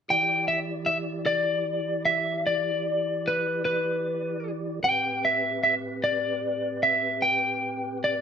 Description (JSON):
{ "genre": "slow blues", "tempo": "50 BPM (dotted quarters)", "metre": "12/8", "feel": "straight", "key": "E minor", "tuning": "A4 = 440 Hz", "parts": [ { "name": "lightly driven lead guitar", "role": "melody", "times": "0.1-8.2 s", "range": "B4 to G5", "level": "-24 LUFS", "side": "left 1 dB", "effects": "none" }, { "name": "mellow tonewheel organ", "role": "sustained chords", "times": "0.1-8.2 s", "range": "A2 to D5", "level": "-32 LUFS", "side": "right 1 dB", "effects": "chorus vibrato, fast rotary speaker" } ], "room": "wet stone room reverb, RT60 1.0 s", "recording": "band playing live in one room", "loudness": "-24 LUFS", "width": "side -7 dB against mid", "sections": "0.1-8.2 A section", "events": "none", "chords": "0.1 Em7; 4.8 Am7" }